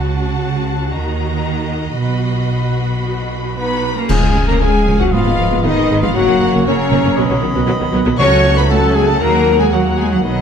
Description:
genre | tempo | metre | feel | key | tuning
cinematic, heroic adventure film score | 117 BPM | 4/4 | straight | Db mixolydian | A4 = 440 Hz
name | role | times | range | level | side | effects
rich symphonic violin section | melody | 0.0-10.4 s | Db5 to Db6 | -25 LUFS | left 4 dB | none
rich symphonic violin section | second line | 0.0-10.4 s | Db5 to Db6 | -27 LUFS | left 2 dB | none
warm symphonic viola section | accompaniment | 0.0-10.4 s | Db3 to Gb4 | -22 LUFS | right 1 dB | none
rich symphonic cello section | bass | 0.0-10.4 s | Cb3 to Db4 | -20 LUFS | right 1 dB | none
warm symphonic double bass section | bass | 0.0-10.4 s | Gb1 to Eb2 | -20 LUFS | right 3 dB | none
warm clarinet | second line | 3.6-10.4 s | Gb3 to Gb4 | -26 LUFS | left 1 dB | none
mellow French horn section | sustained chords | 3.6-10.4 s | Db4 to Db5 | -18 LUFS | left 4 dB | none
warm trumpet | stabs | 3.6-10.4 s | Db4 to Db5 | -23 LUFS | right 1 dB | none
bright concert flute | second line | 4.1-10.4 s | Ab5 to Cb6 | -28 LUFS | left 2 dB | none
warm cor anglais | second line | 4.1-10.4 s | Db5 to Gb5 | -28 LUFS | right 2 dB | none
warm trombone section | sustained chords | 4.1-10.4 s | Db3 to Db4 | -24 LUFS | right 4 dB | none
clash cymbals and concert bass drum | percussion | 4.1-5.1 s | none | -21 LUFS | left 1 dB | none
timpani | percussion | 8.2-8.9 s | Db3 | -21 LUFS | right 1 dB | none
room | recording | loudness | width
moderate scoring stage reverb, RT60 2.0 s | dark, warm production | -13 LUFS | side -7 dB against mid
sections
0.0-4.1 A section; 4.1-10.4 B section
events
band accent 4.1-4.6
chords
0.0 Gbm/Db; 0.9 Ebm; 2.0 Cb; 4.1 Db; 5.1 Abm; 6.2 Gb; 7.2 Cb; 8.2 Gbm/Db; 9.2 Ebm

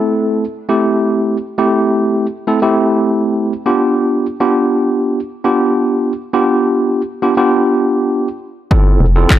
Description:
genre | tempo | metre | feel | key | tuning
dance-pop | 101 BPM | 4/4 | straight | unclear | A4 = 436 Hz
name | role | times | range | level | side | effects
tine electric piano | accompaniment | 0.0-9.4 s | A3 to A4 | -13 LUFS | equal | medium stereo tremolo, sidechain pumping
house drum kit | drums | 8.7-9.4 s | handclaps, kick drum | -11 LUFS | equal | none
organ-like FM bass | bass | 9.0-9.3 s | F1 | -11 LUFS | equal | sidechain pumping
room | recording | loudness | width
light reverb | dry, gritty hardware recording | -12 LUFS | side -12 dB against mid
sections
0.0-9.4 A section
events
none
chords
0.0 Am7; 3.7 G7; 8.7 Fmaj7

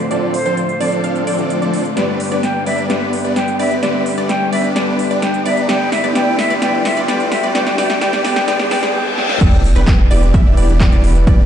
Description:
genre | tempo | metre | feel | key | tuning
EDM, festival progressive house | 129 BPM | 4/4 | straight | A minor | A4 = 440 Hz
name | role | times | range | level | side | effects
clear concert grand piano | accompaniment | 0.0-9.4 s | G2 to G4 | -23 LUFS | left 4 dB | sidechain pumping, digital delay
lush unison pad | sustained chords | 0.0-11.5 s | G3 to C6 | -26 LUFS | equal | chorus, phaser, sidechain pumping
riser, reverse cymbal and sub drop | sound effects | 0.1-11.3 s | none | -24 LUFS | equal | none
wide unison pluck | arpeggios | 0.1-11.5 s | B4 to F5 | -24 LUFS | right 1 dB | cassette tape, sidechain pumping, digital delay
supersaw chords | riff | 0.1-11.5 s | E3 to F5 | -20 LUFS | equal | sidechain pumping, low-pass filter, digital delay
big-room dance drum kit | drums | 0.1-11.4 s | crash cymbal, handclaps, hi-hat, rim click, snare drum | -22 LUFS | equal | overdrive
concert flute | melody | 0.3-9.4 s | C5 to G5 | -21 LUFS | equal | digital delay
saturated sub bass | bass | 9.4-11.5 s | E1 | -14 LUFS | equal | sidechain pumping
electronic kick drum | drums | 9.4-11.4 s | none | -12 LUFS | equal | overdrive
room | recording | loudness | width
moderate huge ambient reverb, RT60 4.3 s | played on a big sound system in a bare room, stone room reverb, high-pass filter, nothing above 10.3 kHz | -13 LUFS | side -9 dB against mid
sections
0.0-9.4 A section; 9.4-11.5 B section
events
build-up 0.0-9.4; filter sweep on supersaw synth 0.0-9.4; filter sweep on synth pluck 0.0-9.4; filter sweep on analog synth pad 0.0-9.4; filter sweep 0.0-9.4; riser 0.1-9.4; drum fill 2.0-8.9, 9.2; reverse cymbal 8.5-9.4; drop 9.4-11.5; impact 9.4-11.3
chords
0.0 F6; 2.0 G; 5.7 Am; 9.4 Em7

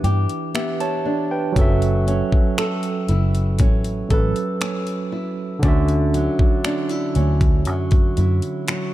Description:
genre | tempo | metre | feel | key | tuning
contemporary R&B | 59 BPM | 4/4 | straight | unclear | A4 = 439 Hz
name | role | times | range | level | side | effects
barky tine electric piano | accompaniment | 0.0-8.9 s | D3 to A5 | -24 LUFS | right 3 dB | medium stereo tremolo
flamenco guitar | arpeggios | 0.0-8.9 s | D3 to A4 | -25 LUFS | equal | ping-pong delay
vintage muted fingered electric bass | bass | 0.0-8.4 s | F#1 to G2 | -20 LUFS | equal | none
trap drum kit | drums | 0.0-8.9 s | finger snaps, hi-hat, kick drum | -19 LUFS | equal | none
room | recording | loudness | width
little or no reverb | dark, warm production | -17 LUFS | side -14 dB against mid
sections
0.0-8.9 A section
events
break 0.0-1.6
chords
0.0 Em7; 1.6 F#m7; 5.6 Dmaj9

